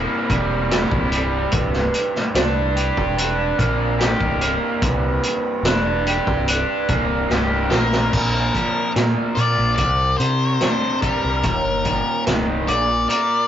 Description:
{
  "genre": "psychedelic rock",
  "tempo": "73 BPM",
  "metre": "4/4",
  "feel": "straight",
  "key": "unclear",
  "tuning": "A4 = 441 Hz",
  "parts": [
    { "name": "raw garage guitar", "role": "riff", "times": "0.0-13.5 s", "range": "C2 to Bb4", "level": "-22 LUFS", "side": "right 1 dB", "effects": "overdrive" },
    { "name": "growling fingered electric bass", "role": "bass", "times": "0.0-13.1 s", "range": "C1 to C3", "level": "-23 LUFS", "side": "equal", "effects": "overdrive" },
    { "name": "tanpura", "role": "drone", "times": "0.0-13.5 s", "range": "C2 to C3", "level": "-32 LUFS", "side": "right 1 dB", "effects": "none" },
    { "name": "vintage drum kit", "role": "drums", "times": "0.3-13.3 s", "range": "crash cymbal, hi-hat, kick drum, snare drum", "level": "-22 LUFS", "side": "equal", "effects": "none" },
    { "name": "octave-fuzz lead guitar", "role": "melody", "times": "7.7-13.5 s", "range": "Bb4 to D5", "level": "-21 LUFS", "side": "left 2 dB", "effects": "distortion" }
  ],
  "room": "moderate small room ambience, RT60 0.5 s",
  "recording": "rough rehearsal-room recording, warm saturation, nothing above 7.6 kHz",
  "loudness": "-17 LUFS",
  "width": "side -10 dB against mid",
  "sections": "0.0-8.1 A section; 8.1-13.5 B section",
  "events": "drum fill 7.3-8.1",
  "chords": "0.0 C7; 1.5 Gm/C; 8.1 Bbsus2; 9.8 Csus2; 11.4 Eb; 12.7 Bb"
}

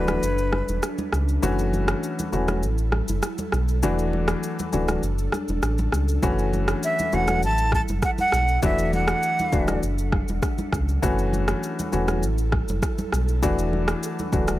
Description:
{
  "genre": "afrobeats",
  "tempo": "100 BPM",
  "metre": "4/4",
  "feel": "straight",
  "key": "F# minor",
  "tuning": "A4 = 440 Hz",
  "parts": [
    { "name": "breathy bright jazz flute", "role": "melody", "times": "0.0-0.8, 6.8-9.8 s", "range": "B4 to A5", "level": "-25 LUFS", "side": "right 1 dB", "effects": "tape echo" },
    { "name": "warm baby grand piano", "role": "accompaniment", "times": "0.0-14.6 s", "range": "E3 to F#4", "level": "-26 LUFS", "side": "left 3 dB", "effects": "none" },
    { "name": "ethereal airy pad", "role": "sustained chords", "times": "0.0-14.6 s", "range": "F#3 to A4", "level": "-33 LUFS", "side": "equal", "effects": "ensemble chorus, built-in reverb" },
    { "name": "sub bass with octave", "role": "bass", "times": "0.0-14.6 s", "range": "D1 to C#2", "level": "-24 LUFS", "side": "equal", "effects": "none" },
    { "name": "afro-pop drum kit", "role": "drums", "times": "0.1-14.6 s", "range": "kick drum, rim click, shaker", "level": "-27 LUFS", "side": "equal", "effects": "none" },
    { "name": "congas", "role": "percussion", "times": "0.1-14.6 s", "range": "none", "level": "-32 LUFS", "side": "right 1 dB", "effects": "none" }
  ],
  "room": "small room ambience",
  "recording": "dry, gritty hardware recording",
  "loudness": "-21 LUFS",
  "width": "side -15 dB against mid",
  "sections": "0.0-14.6 A section",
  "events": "break 0.0-6.2",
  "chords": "0.0 E9sus4; 1.4 F#m7; 3.8 E9sus4; 6.2 F#m7; 8.6 E9sus4; 11.0 F#m7; 13.4 E9sus4"
}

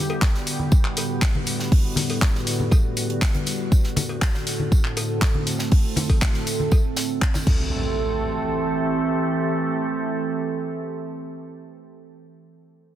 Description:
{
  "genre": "progressive house",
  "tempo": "120 BPM",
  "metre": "4/4",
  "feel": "straight",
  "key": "A dorian",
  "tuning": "A4 = 440 Hz",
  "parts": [
    { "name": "evolving wavetable pad", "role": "sustained chords", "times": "0.0-11.8 s", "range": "A2 to A4", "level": "-25 LUFS", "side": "right 2 dB", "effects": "chorus, built-in reverb, sidechain pumping" },
    { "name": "cowbell and congas", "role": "percussion", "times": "0.1-7.4 s", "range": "none", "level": "-28 LUFS", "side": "left 2 dB", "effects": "sidechain pumping on perc" },
    { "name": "deep house drum kit", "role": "drums", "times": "0.2-7.6 s", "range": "crash cymbal, handclaps, hi-hat", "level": "-28 LUFS", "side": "left 1 dB", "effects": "overdrive" },
    { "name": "electronic kick drum", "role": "drums", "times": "0.2-7.6 s", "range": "none", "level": "-18 LUFS", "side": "equal", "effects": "none" },
    { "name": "tight funk drum kit", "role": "drums", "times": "0.2-7.5 s", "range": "hi-hat, snare drum, tambourine", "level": "-34 LUFS", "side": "right 2 dB", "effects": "sidechain pumping on hats, high-pass filter on hats, high-pass filter on snare, sidechain pumping on perc, high-pass filter on perc, high-pass filter on room" },
    { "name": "impact", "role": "sound effects", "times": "7.5-11.9 s", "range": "none", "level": "-30 LUFS", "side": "equal", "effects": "none" }
  ],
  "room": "light reverb, small room ambience",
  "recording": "dense, heavily limited modern master",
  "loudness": "-20 LUFS",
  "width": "side -11 dB against mid",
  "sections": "0.0-7.7 A section; 7.7-11.7 B section",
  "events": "none",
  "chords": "0.0 Gmaj7/A; 3.7 D7/A; 7.5 Am7"
}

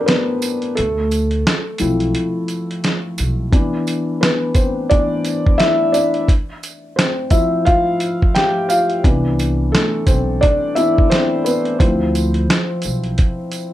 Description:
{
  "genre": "lo-fi hip hop",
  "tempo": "87 BPM",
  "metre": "4/4",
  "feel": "swing 59% on 16ths",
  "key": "C major",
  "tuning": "A4 = 440 Hz",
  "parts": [
    { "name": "felt-muted upright piano", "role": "accompaniment", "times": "0.0-13.7 s", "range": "E3 to G5", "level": "-17 LUFS", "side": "left 1 dB", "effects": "low-pass filter" },
    { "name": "dusty soul sampler-style drum kit", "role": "drums", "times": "0.1-13.7 s", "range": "hi-hat, kick drum, snare drum", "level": "-16 LUFS", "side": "equal", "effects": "none" },
    { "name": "tambourine", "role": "percussion", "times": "0.4-13.7 s", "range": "none", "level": "-32 LUFS", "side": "right 10 dB", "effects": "none" },
    { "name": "upright bass", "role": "bass", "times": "0.8-3.5, 9.0-13.2 s", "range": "B1 to D2", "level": "-20 LUFS", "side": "right 1 dB", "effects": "none" }
  ],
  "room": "moderate small room reverb, RT60 0.6 s",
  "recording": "none",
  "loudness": "-14 LUFS",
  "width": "side -13 dB against mid",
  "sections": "0.0-13.7 A section",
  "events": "break 0.0-3.5; felt piano solo 0.0-13.7",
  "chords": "0.0 Cmaj9; 0.8 Dm7; 3.5 Cmaj9; 6.3 Cadd11; 9.0 Cmaj9; 11.8 Dm7"
}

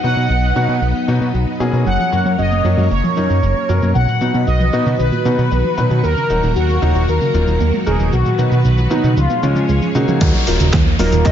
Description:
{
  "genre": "italo disco",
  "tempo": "115 BPM",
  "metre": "4/4",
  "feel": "straight",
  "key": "Eb minor",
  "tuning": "A4 = 440 Hz",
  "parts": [
    { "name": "analog synth brass", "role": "melody", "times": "0.0-11.3 s", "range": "Bb3 to F#5", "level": "-20 LUFS", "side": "left 1 dB", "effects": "chorus, tape echo" },
    { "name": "string machine, full ensemble", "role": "sustained chords", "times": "0.0-11.3 s", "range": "D#3 to Eb5", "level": "-22 LUFS", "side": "equal", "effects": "phaser, ensemble chorus" },
    { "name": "warm grand piano", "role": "stabs", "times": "0.0-11.2 s", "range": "B2 to B4", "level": "-24 LUFS", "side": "left 2 dB", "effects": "none" },
    { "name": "fat analog bass", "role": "bass", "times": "0.0-11.3 s", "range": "Eb1 to Db3", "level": "-16 LUFS", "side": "equal", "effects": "tube saturation" },
    { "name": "clean 12-bit digital drum machine", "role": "drums", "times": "0.0-11.3 s", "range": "cabasa, crash cymbal, handclaps, hi-hat, snare drum", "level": "-29 LUFS", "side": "left 2 dB", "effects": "low-pass filter on cymbals, low-pass filter on perc, low-pass filter on hats, low-pass filter on snare" },
    { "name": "warbly dusty pluck", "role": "arpeggios", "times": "1.9-11.3 s", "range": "Db2 to Db4", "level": "-22 LUFS", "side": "right 4 dB", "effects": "chorus, tape echo" },
    { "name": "electronic kick drum", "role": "drums", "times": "10.2-11.3 s", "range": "none", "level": "-16 LUFS", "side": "equal", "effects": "overdrive" },
    { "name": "downlifter", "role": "sound effects", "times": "10.2-11.3 s", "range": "none", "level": "-24 LUFS", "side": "equal", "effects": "none" }
  ],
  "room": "light reverb",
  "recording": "nothing above 7.6 kHz",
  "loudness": "-13 LUFS",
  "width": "side -10 dB against mid",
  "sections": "0.0-10.2 A section; 10.2-11.3 B section",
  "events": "none",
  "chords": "0.0 B; 1.9 Gb; 4.0 B; 6.0 Ebm; 8.1 B; 9.2 Db; 10.2 Ebmadd9"
}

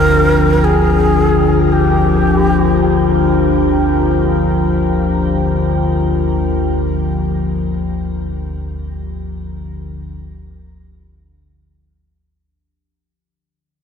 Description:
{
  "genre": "dark ambient drone",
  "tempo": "free time",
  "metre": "none",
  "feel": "none",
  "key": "unclear",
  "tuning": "A4 = 439 Hz",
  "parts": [
    { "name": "breathy long shakuhachi", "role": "melody", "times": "0.0-3.3 s", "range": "G4 to Bb4", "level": "-18 LUFS", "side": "equal", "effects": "shimmer reverb, ping-pong delay" },
    { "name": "deep dark ambient pad", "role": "sustained chords", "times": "0.0-12.4 s", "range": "F3 to G5", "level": "-16 LUFS", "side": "left 3 dB", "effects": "chorus, built-in reverb, shimmer reverb" },
    { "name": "bronze singing bowl", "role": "arpeggios", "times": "0.0-8.8 s", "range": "D3 to G4", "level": "-22 LUFS", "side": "left 1 dB", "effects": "shimmer reverb, ping-pong delay" },
    { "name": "deep rumbling drone", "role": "drone", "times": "0.0-12.5 s", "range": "G1 to D2", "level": "-19 LUFS", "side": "equal", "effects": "built-in reverb, lush chorus" },
    { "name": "bronze singing bowl", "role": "texture", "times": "0.0-12.4 s", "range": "none", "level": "barely audible", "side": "none", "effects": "none" }
  ],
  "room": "wet cathedral reverb, RT60 5.0 s",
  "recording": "in a vast, echoing space",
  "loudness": "-12 LUFS",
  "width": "side -7 dB against mid",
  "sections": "0.0-12.4 A section",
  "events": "fade-out 6.7-12.4",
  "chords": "0.0 Gm7"
}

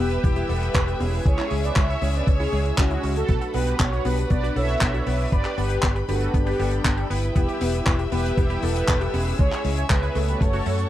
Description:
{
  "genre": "italo disco",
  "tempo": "118 BPM",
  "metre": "4/4",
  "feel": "straight",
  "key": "unclear",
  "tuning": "A4 = 443 Hz",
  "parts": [
    { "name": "mellow synth brass", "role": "melody", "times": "0.0-10.9 s", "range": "C#4 to E5", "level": "-27 LUFS", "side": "equal", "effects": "chorus, tape echo" },
    { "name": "warm studio string section", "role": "sustained chords", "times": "0.0-10.9 s", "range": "D4 to E6", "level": "-34 LUFS", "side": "left 2 dB", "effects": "none" },
    { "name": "wide unison pluck", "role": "arpeggios", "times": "0.0-10.7 s", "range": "G#3 to G4", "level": "-33 LUFS", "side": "left 2 dB", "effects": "tape echo" },
    { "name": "chorused polysynth", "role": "stabs", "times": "0.0-10.9 s", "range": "G#3 to B4", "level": "-31 LUFS", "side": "right 1 dB", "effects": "cassette tape" },
    { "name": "fingered electric bass with an envelope filter", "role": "bass", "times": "0.0-10.8 s", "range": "E1 to F#2", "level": "-25 LUFS", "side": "equal", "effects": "none" },
    { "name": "damped 70s drum kit", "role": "drums", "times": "0.1-10.9 s", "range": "handclaps, hi-hat", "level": "-30 LUFS", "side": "equal", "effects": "none" },
    { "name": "electronic kick drum", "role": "drums", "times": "0.2-10.5 s", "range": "none", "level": "-22 LUFS", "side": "equal", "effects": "none" }
  ],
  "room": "little or no reverb",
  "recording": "dry, close 1970s-style studio recording",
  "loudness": "-20 LUFS",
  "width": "side -13 dB against mid",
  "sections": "0.0-10.9 A section",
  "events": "none",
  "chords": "0.0 Em; 1.3 C#m; 3.3 Bm; 5.3 G; 7.4 Em; 9.4 C#m"
}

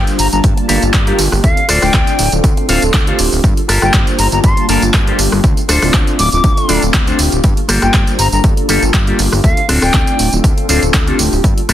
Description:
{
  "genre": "filtered disco house",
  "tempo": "120 BPM",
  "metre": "4/4",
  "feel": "swing 54% on 16ths",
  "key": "G minor",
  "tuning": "A4 = 439 Hz",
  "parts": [
    { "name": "jazz flute", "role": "melody", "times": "0.0-10.3 s", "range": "F5 to D6", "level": "-19 LUFS", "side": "left 2 dB", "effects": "sidechain pumping, digital delay" },
    { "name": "mellow synth brass", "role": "accompaniment", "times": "0.0-11.6 s", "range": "G3 to A5", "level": "-18 LUFS", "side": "equal", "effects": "chorus, phaser, sidechain pumping" },
    { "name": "electric guitar with an envelope filter", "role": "riff", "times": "0.0-11.7 s", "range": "Bb3 to F5", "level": "-18 LUFS", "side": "left 2 dB", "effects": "sidechain pumping" },
    { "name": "fat analog bass", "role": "bass", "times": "0.0-11.7 s", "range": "D1 to G2", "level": "-16 LUFS", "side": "equal", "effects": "sidechain pumping" },
    { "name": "punchy analog drum machine", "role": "drums", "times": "0.1-11.7 s", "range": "handclaps, hi-hat, rim click, tambourine", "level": "-17 LUFS", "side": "right 1 dB", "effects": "overdrive, sidechain pumping on perc, studio reverb, sidechain pumping on hats, sidechain pumping on cymbals" },
    { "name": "electronic kick drum", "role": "drums", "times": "0.4-11.5 s", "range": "none", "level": "-12 LUFS", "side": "equal", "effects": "overdrive, studio reverb" }
  ],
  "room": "digital ambience",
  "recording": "dense, heavily limited modern master",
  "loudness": "-10 LUFS",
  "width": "side -12 dB against mid",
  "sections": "0.0-11.7 A section",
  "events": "none",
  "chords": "0.0 Gm9; 1.4 Dm7; 3.4 Gm9; 5.4 Dm7; 7.4 Gm9; 9.4 Dm7"
}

